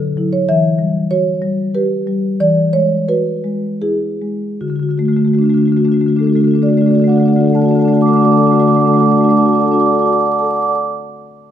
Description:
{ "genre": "classical, contemporary piece for solo marimba", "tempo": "74-97 BPM", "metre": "3/4", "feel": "rubato", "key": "D major", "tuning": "A4 = 438 Hz", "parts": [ { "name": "marimba with soft mallets", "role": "solo", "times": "0.0-10.8 s", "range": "D3 to D6", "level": "-12 LUFS", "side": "equal", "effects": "none" } ], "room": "moderate recital hall reverb, RT60 1.9 s", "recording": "none", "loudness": "-12 LUFS", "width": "side -10 dB against mid", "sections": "0.0-4.6 A section; 4.6-9.3 B section", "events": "slowing down 0.0-4.6", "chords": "0.5 Emadd9; 2.4 Eadd9; 4.6 D", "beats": "| 0.48 1.10 1.74 | 2.39 3.08 3.82 | 4.61 5.40 6.18 | 6.97 7.76 8.55" }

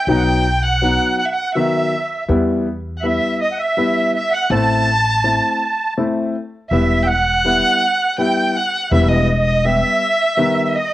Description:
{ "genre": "klezmer", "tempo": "82 BPM", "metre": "3/4", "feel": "straight", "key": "unclear", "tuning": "A4 = 440 Hz", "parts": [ { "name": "rich violin", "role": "melody", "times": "0.0-10.9 s", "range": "D#5 to A5", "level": "-20 LUFS", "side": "left 1 dB", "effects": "cassette tape" }, { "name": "musette accordion", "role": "second line", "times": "0.0-10.9 s", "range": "D#5 to A5", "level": "-19 LUFS", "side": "right 3 dB", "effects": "cassette tape" }, { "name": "warm upright piano", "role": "accompaniment", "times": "0.1-10.7 s", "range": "D#3 to G4", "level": "-19 LUFS", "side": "left 2 dB", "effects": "cassette tape" }, { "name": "upright bass", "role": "bass", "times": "0.1-9.8 s", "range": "E1 to E2", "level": "-19 LUFS", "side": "equal", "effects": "none" } ], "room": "moderate spring reverb, RT60 1.2 s, studio ambience", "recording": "home recording on cassette", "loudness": "-14 LUFS", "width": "side -15 dB against mid", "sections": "0.0-6.7 A section; 6.7-10.9 B section", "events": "none", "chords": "0.1 B; 2.3 Em; 4.5 Am; 6.7 Em", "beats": "| 0.09 0.82 1.56 | 2.29 3.03 3.77 | 4.50 5.24 5.97 | 6.71 7.44 8.18 | 8.91 9.64 10.38" }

